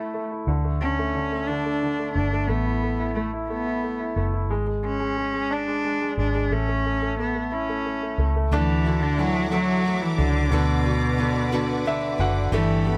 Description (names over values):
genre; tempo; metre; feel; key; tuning
six-eight pop ballad; 60 BPM (dotted quarters); 6/8; straight; D major; A4 = 438 Hz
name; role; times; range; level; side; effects
rich cello; melody; 0.0-13.0 s; B2 to D4; -28 LUFS; equal; none
clear concert grand piano; accompaniment; 0.0-13.0 s; D3 to F#5; -30 LUFS; equal; none
vintage muted fingered electric bass; bass; 0.5-13.0 s; F#1 to D2; -28 LUFS; equal; none
warm studio string section; sustained chords; 8.5-13.0 s; A4 to D6; -35 LUFS; equal; none
picked steel-string acoustic guitar; arpeggios; 8.5-13.0 s; D3 to B4; -34 LUFS; equal; none
room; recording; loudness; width
small room ambience; none; -24 LUFS; mono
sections
0.0-8.5 A section; 8.5-13.0 B section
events
grand piano fill 11.5-12.5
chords
0.5 D5; 2.5 A5; 4.5 G#sus4; 6.5 A; 8.5 Dadd9; 10.5 Bm/D